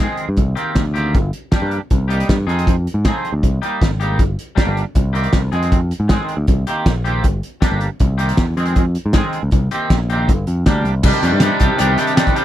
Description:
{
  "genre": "indie rock",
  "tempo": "158 BPM",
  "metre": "4/4",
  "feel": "straight",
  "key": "C minor",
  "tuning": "A4 = 442 Hz",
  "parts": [
    { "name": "twangy electric guitar", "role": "riff", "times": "0.0-12.4 s", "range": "C3 to Ab4", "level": "-19 LUFS", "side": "equal", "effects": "double-tracked left and right" },
    { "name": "picked electric bass", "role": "bass", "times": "0.0-12.0 s", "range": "G1 to Ab2", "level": "-18 LUFS", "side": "equal", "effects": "none" },
    { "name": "loose indie drum kit", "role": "drums", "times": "0.2-12.4 s", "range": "crash cymbal, hi-hat, kick drum, snare drum", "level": "-17 LUFS", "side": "equal", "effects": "none" }
  ],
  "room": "little or no reverb",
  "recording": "none",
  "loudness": "-14 LUFS",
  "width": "side -12 dB against mid",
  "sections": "0.0-11.0 A section; 11.0-12.4 B section",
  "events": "none",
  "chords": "0.4 Cm7; 1.1 Gm; 1.9 Cm7; 2.5 Fm7; 3.4 Cm7; 4.2 Gm; 5.0 Cm7; 5.5 Fm7; 6.5 Cm7; 7.2 Gm; 8.0 Cm7; 8.6 Fm7; 9.5 Cm7; 10.3 Gm; 11.0 Cmadd9"
}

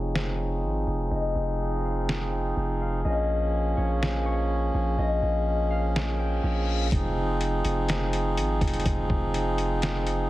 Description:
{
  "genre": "hip hop, atmospheric cloud-rap",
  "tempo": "124 BPM",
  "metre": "4/4",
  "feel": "half-time",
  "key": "F minor",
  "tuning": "A4 = 439 Hz",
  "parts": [
    { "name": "concert harp", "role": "melody", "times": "0.0-7.7 s", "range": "C5 to G5", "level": "-33 LUFS", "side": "left 5 dB", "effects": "low-pass filter, analog delay" },
    { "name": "pedal harmonium", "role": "sustained chords", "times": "0.0-10.3 s", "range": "F3 to Ab4", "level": "-28 LUFS", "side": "right 1 dB", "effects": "sidechain pumping, low-pass filter" },
    { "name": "long sustained 808-style bass", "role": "bass", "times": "0.0-10.3 s", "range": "F1 to Bb1", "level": "-27 LUFS", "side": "equal", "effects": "none" },
    { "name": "trip hop sampler-style drum kit", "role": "drums", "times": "0.2-10.2 s", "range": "hi-hat, kick drum, snare drum", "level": "-29 LUFS", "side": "equal", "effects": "overdrive" },
    { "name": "reverse cymbal", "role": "sound effects", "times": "6.2-6.9 s", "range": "none", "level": "-37 LUFS", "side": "left 8 dB", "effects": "none" }
  ],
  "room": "little or no reverb",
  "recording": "heavily compressed radio sound",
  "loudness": "-24 LUFS",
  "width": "side -16 dB against mid",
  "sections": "0.0-6.9 A section; 6.9-10.3 B section",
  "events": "filter sweep 0.0-6.9; reverse cymbal 6.2-6.9",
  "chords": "0.0 Fm7; 3.0 Bbm7; 6.9 Fm7"
}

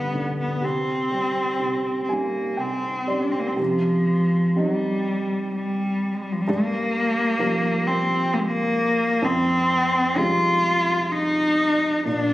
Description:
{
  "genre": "celtic folk, Celtic slow air",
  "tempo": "60-66 BPM",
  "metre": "3/4",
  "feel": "rubato",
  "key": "C minor",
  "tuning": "A4 = 438 Hz",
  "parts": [
    { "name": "dark cello", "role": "melody", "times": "0.0-12.3 s", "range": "F3 to F4", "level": "-21 LUFS", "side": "left 1 dB", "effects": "none" },
    { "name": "dark upright piano", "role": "accompaniment", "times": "0.0-12.3 s", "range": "F2 to Ab5", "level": "-26 LUFS", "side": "right 2 dB", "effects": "none" }
  ],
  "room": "moderate concert hall reverb, RT60 2.3 s",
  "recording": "recorded on a phone in the room, studio reverb, compression",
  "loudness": "-20 LUFS",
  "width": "side -16 dB against mid",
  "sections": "0.0-3.6 A section; 3.6-12.3 B section",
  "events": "upright piano fill 1.6-3.6",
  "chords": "0.0 G5; 0.6 C5; 3.6 Cm; 6.5 Gm7; 9.2 Fmadd9"
}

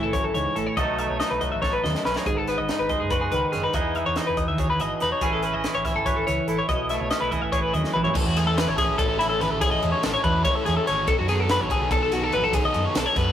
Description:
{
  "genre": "math rock and midwest emo",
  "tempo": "286 BPM (eighths)",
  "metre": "7/8",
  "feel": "straight",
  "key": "unclear",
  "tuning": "A4 = 439 Hz",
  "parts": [
    { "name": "twangy electric guitar", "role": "accompaniment", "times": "0.0-9.6 s", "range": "F#2 to B4", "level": "-28 LUFS", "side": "right 4 dB", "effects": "none" },
    { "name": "twelve-string electric guitar", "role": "arpeggios", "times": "0.0-13.3 s", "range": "E4 to E5", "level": "-24 LUFS", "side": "left 2 dB", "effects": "spring reverb" },
    { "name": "hollow-body short-scale fingered electric bass", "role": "bass", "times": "0.0-13.3 s", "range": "E1 to F#2", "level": "-29 LUFS", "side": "equal", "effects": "none" },
    { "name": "crisp fusion drum kit", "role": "drums", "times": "0.1-13.3 s", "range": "crash cymbal, hi-hat, kick drum, ride cymbal, snare drum, toms", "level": "-28 LUFS", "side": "equal", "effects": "none" },
    { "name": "biting overdriven guitar", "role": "riff", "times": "8.1-13.3 s", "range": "A2 to A4", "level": "-28 LUFS", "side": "right 2 dB", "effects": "none" }
  ],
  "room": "moderate studio reverb, RT60 0.6 s",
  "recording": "rough rehearsal-room recording",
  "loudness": "-21 LUFS",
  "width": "side -10 dB against mid",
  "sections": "0.0-8.2 A section; 8.2-13.3 B section",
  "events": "drum fill 1.6-2.3, 7.8-8.2",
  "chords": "0.0 Amaj7; 0.8 B7; 2.3 G#m7; 3.7 Emaj7; 5.2 Amaj7; 6.7 B7sus4; 8.2 Amaj9; 11.1 B7"
}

